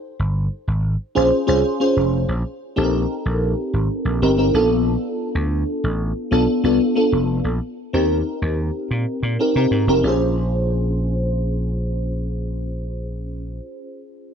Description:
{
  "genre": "polished 1980s jazz-funk pop",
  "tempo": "93 BPM",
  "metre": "4/4",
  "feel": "straight",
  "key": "Bb dorian",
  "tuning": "A4 = 440 Hz",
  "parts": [
    { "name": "vintage slap bass", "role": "bass", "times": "0.2-13.6 s", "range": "F1 to C3", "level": "-21 LUFS", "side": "equal", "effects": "none" },
    { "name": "bell-like FM electric piano", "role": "accompaniment", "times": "1.1-14.3 s", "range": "B3 to C5", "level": "-20 LUFS", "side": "equal", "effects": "ensemble chorus" }
  ],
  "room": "light reverb",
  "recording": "none",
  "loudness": "-18 LUFS",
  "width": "side -7 dB against mid",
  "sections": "0.0-10.0 A section; 10.0-12.6 B section",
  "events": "none",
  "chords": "0.0 Bbm7 (rootless); 2.3 Cm7/Bb; 4.5 Bm7b5; 7.5 Cm7/Bb; 10.0 Bbm7"
}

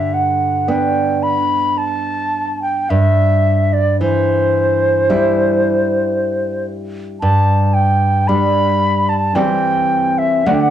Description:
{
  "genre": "romantic duo for flute and classical guitar",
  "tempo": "55 BPM",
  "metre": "4/4",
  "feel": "rubato",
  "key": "unclear",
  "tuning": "A4 = 441 Hz",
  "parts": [
    { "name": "concert flute", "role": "melody", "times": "0.0-10.7 s", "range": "C5 to B5", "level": "-16 LUFS", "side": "equal", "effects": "cassette tape" },
    { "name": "nylon-string guitar", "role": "accompaniment", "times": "0.0-10.7 s", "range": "G2 to E4", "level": "-16 LUFS", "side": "right 1 dB", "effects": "cassette tape" }
  ],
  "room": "moderate studio reverb, RT60 0.6 s",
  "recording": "home recording on cassette, small room reverb",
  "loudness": "-13 LUFS",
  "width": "side -10 dB against mid",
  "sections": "0.0-10.7 A section",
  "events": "none",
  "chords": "0.0 G; 2.9 C/G; 7.2 G5; 9.4 C/E"
}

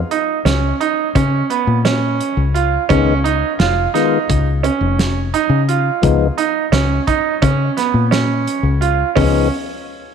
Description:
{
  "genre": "progressive instrumental, band music in an uneven meter",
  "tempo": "172 BPM (eighths)",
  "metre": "9/8",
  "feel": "straight",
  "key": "Db mixolydian",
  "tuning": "A4 = 438 Hz",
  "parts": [
    { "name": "fingered electric bass", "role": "bass", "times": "0.0-9.5 s", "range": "F1 to Db3", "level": "-16 LUFS", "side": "left 2 dB", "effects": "none" },
    { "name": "clear baby grand piano", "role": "arpeggios", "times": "0.1-9.5 s", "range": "Cb4 to F4", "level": "-17 LUFS", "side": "right 8 dB", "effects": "none" },
    { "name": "natural country drum kit", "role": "drums", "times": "0.1-9.3 s", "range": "hi-hat, kick drum, snare drum, toms", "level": "-21 LUFS", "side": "right 1 dB", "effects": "none" },
    { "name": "tonewheel organ", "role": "accompaniment", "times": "2.9-9.5 s", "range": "Eb3 to F4", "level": "-20 LUFS", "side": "left 12 dB", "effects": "slow rotary speaker" }
  ],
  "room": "light reverb, studio ambience",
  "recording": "1960s-style stereo with parts hard left and right",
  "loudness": "-14 LUFS",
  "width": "side -7 dB against mid",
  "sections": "0.0-9.2 A section",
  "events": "none",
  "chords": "0.0 N.C.; 2.9 Abm; 6.0 Db7"
}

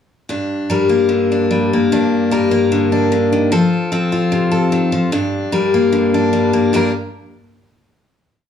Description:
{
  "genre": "country",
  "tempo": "150 BPM",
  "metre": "4/4",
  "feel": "straight",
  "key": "G minor",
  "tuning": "A4 = 440 Hz",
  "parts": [
    { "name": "picked steel-string acoustic guitar", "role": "solo", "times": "0.3-6.9 s", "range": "G2 to Bb4", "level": "-13 LUFS", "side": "left 2 dB", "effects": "none" }
  ],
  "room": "moderate large studio reverb, RT60 1.1 s",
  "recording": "small room reverb",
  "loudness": "-13 LUFS",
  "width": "side -8 dB against mid",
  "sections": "0.3-6.7 A section; 6.7-8.3 final chord",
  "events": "none",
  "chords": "0.3 Gm; 3.5 F; 5.1 Gm"
}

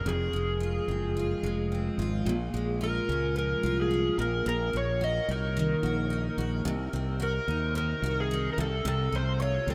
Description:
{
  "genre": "acoustic pop",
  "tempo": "109 BPM",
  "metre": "4/4",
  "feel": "swing 55% on 16ths",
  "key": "Bb minor",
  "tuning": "A4 = 440 Hz",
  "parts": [
    { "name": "overdriven slide guitar", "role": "melody", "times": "0.0-9.7 s", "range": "Ab4 to Eb5", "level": "-34 LUFS", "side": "equal", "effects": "analog chorus, delay" },
    { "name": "picked steel-string acoustic guitar", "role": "accompaniment", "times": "0.0-9.7 s", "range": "F2 to Gb4", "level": "-34 LUFS", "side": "equal", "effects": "double-tracked" },
    { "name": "fretless electric bass", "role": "bass", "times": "0.1-9.7 s", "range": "F1 to Eb2", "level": "-33 LUFS", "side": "equal", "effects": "lush chorus" }
  ],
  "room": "moderate huge ambient reverb, RT60 8.4 s",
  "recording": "dreamy mix soaked in reverb",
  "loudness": "-29 LUFS",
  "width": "mono",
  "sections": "0.0-2.3 A section; 2.3-9.7 B section",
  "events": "none",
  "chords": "0.0 Fm; 2.3 Bbm7; 4.2 Ebm/Bb; 6.7 Cdim; 8.6 F/C"
}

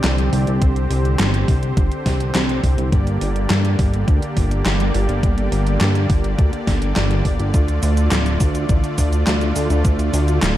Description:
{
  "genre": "synthwave",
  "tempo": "104 BPM",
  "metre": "4/4",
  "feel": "straight",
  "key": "unclear",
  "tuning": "A4 = 440 Hz",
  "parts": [
    { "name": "soft supersaw", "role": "sustained chords", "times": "0.0-10.6 s", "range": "D3 to D5", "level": "-24 LUFS", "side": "equal", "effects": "vintage 12-bit sampler grit" },
    { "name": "chorused synth bass", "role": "bass", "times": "0.0-10.6 s", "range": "D1 to G2", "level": "-18 LUFS", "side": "equal", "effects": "sidechain pumping" },
    { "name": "gated 80s digital drum machine", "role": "drums", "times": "0.0-10.5 s", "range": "cabasa, handclaps, hi-hat, snare drum", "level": "-23 LUFS", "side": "equal", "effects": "gated reverb, gated reverb snare, overdrive" },
    { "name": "electronic kick drum", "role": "drums", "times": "0.6-10.0 s", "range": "none", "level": "-18 LUFS", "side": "equal", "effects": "overdrive" }
  ],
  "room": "little or no reverb",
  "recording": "dark, warm production",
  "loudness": "-16 LUFS",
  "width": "side -13 dB against mid",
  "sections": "0.0-10.6 A section",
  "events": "none",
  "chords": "0.0 Csus2; 2.9 Gm; 7.5 Dm"
}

